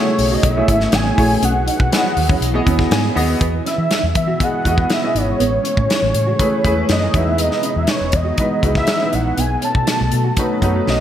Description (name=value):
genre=polished 1980s jazz-funk pop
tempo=121 BPM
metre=4/4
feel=straight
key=E major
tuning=A4 = 440 Hz
part: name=fat analog lead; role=melody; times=0.0-11.0 s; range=C#5 to A5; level=-20 LUFS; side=equal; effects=chorus
part: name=warm concert grand piano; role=accompaniment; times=0.0-11.0 s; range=F#3 to G#5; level=-22 LUFS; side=equal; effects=analog chorus
part: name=soft string machine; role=sustained chords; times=0.0-11.0 s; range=B2 to G#4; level=-25 LUFS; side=equal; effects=ensemble chorus
part: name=mellow electric guitar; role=riff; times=0.0-11.0 s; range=B3 to F#4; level=-27 LUFS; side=right 4 dB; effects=ensemble chorus
part: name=vintage muted fingered electric bass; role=bass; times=0.2-11.0 s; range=E1 to E3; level=-20 LUFS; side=equal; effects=none
part: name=modern studio drum kit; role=drums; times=0.2-11.0 s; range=hi-hat, kick drum, snare drum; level=-20 LUFS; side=equal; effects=none
room=moderate lush hall reverb, RT60 2.1 s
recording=bright 1980s-style digital production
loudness=-14 LUFS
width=side -10 dB against mid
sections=0.0-3.4 A section; 3.4-11.0 B section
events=grand piano fill 2.4-3.4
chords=0.0 B13sus4; 1.4 Emaj9/B; 3.4 Emaj7; 5.4 Amaj7; 7.1 Emaj7; 9.4 B7